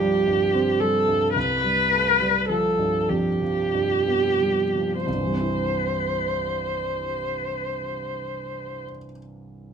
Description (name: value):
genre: classical, romantic duo for viola and grand piano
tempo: 28-38 BPM (dotted quarters)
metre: 6/8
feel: rubato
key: C major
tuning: A4 = 438 Hz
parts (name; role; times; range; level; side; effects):
- rich viola; melody; 0.0-8.8 s; G4 to C5; -22 LUFS; right 1 dB; none
- clear grand piano; accompaniment; 0.0-9.7 s; C2 to E4; -27 LUFS; equal; none
room: moderate studio reverb, RT60 0.9 s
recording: minimal, uncompressed stereo recording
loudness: -21 LUFS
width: side -7 dB against mid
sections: 0.0-5.1 A section; 5.1-8.8 B section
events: slowing down 0.0-5.1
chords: 0.0 C5; 1.4 G7/C; 5.1 C